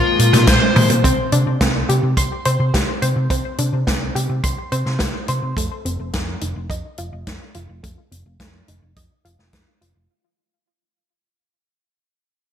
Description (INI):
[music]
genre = synthwave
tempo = 106 BPM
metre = 4/4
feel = straight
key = C minor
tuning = A4 = 440 Hz
[part]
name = dark smooth lead guitar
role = melody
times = 0.0-0.9 s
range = F4 to C5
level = -19 LUFS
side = left 4 dB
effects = overdrive, digital delay
[part]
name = soft supersaw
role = sustained chords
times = 0.0-1.0 s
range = Eb3 to F4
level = -26 LUFS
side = equal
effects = none
[part]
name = hollow-body short-scale picked electric bass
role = bass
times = 0.2-10.1 s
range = F1 to C3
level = -20 LUFS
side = equal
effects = sidechain pumping, low-pass filter
[part]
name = vintage drum kit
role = drums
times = 0.2-9.9 s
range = hi-hat, snare drum, toms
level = -21 LUFS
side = equal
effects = gated reverb
[part]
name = kick drum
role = drums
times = 0.5-9.6 s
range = none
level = -22 LUFS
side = equal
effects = none
[part]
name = analog pluck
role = arpeggios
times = 1.0-10.1 s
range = A3 to C6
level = -25 LUFS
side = equal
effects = chorus, ping-pong delay
[sound]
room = moderate plate reverb, RT60 2.4 s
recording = bright 1980s-style digital production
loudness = -16 LUFS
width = side -9 dB against mid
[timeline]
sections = 0.0-1.0 A section; 1.0-10.1 B section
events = band accent 0.5; drum fill 0.6-1.0; fade-out 1.0-10.1; filter sweep on synth arpeggio sound 1.0-10.1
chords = 0.0 Bb7sus4; 1.0 Csus2; 5.6 F7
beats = 0.47 | 1.04 1.61 2.17 2.74 | 3.30 3.87 4.44 5.00 | 5.57 6.13 6.70 7.27 | 7.83 8.40 8.96 9.53